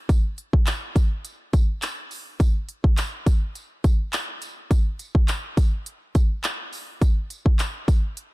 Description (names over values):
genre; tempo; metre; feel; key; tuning
pop; 104 BPM; 4/4; straight; none; none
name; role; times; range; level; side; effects
house drum kit; drums; 0.1-8.3 s; handclaps, hi-hat, kick drum; -20 LUFS; equal; none
tambourine; percussion; 0.1-8.0 s; none; -41 LUFS; right 2 dB; none
room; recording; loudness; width
little or no reverb; dark, warm production; -21 LUFS; side -21 dB against mid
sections
0.0-8.3 A section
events
none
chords
none